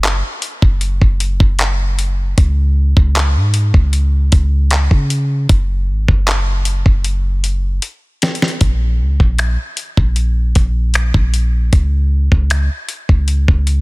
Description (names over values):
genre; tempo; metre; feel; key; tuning
contemporary R&B; 77 BPM; 4/4; straight; unclear; A4 = 441 Hz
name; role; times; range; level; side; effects
soft 808-style bass; bass; 0.0-13.8 s; F#1 to C#3; -14 LUFS; equal; none
dusty soul sampler-style drum kit; drums; 0.0-13.8 s; finger snaps, handclaps, hi-hat, kick drum, snare drum; -14 LUFS; equal; none
room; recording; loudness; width
digital ambience; dense, heavily limited modern master; -12 LUFS; side -23 dB against mid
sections
0.0-8.6 A section; 8.6-13.8 B section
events
drum fill 7.1-8.6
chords
none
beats
0.04 0.82 1.60 | 2.38 3.15 3.93 4.71 | 5.49 6.27 7.05 7.83 | 8.61 9.39 10.17 10.95 | 11.73 12.51 13.29